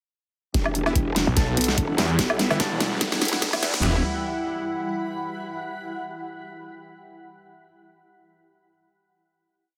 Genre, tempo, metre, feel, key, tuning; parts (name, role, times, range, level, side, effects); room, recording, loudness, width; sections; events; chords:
heavy wobble dubstep; 146 BPM; 4/4; swing 54% on 16ths, half-time; E minor; A4 = 441 Hz
mellow electric guitar; melody; 0.5-4.0 s; G4 to A4; -38 LUFS; equal; low-pass filter, digital delay
evolving wavetable pad; sustained chords; 1.3-4.0 s; G3 to F#5; -38 LUFS; equal; chorus, built-in reverb, sidechain pumping
growl bass; bass; 0.5-4.0 s; E1 to E2; -28 LUFS; equal; chorus, overdrive
dubstep drum kit; drums; 0.5-3.9 s; handclaps, kick drum, snare drum, toms; -27 LUFS; equal
dubstep drum kit; drums; 0.5-3.8 s; hi-hat, snare drum, woodblock; -27 LUFS; equal
riser; sound effects; 1.9-3.8 s; -36 LUFS; equal
granular cloud pad; texture; 2.4-5.4 s; G3 to B5; -35 LUFS; equal; built-in reverb, sidechain pumping
supersaw stab; stabs; 0.9-4.0 s; E3 to E4; -37 LUFS; equal
snarling distorted saw bass; bass; 1.3-3.1 s; E1 to E2; -27 LUFS; equal; distortion, overdrive
light reverb; dense, heavily limited modern master, high-pass filter; -24 LUFS; mono
0.5-3.8 build; 3.8-5.5 final chord
build-up 0.5-3.8; drum fill 0.5-3.8; filter sweep on clean electric guitar 0.5-3.8; filter sweep 0.5-3.8
0.5 Emadd9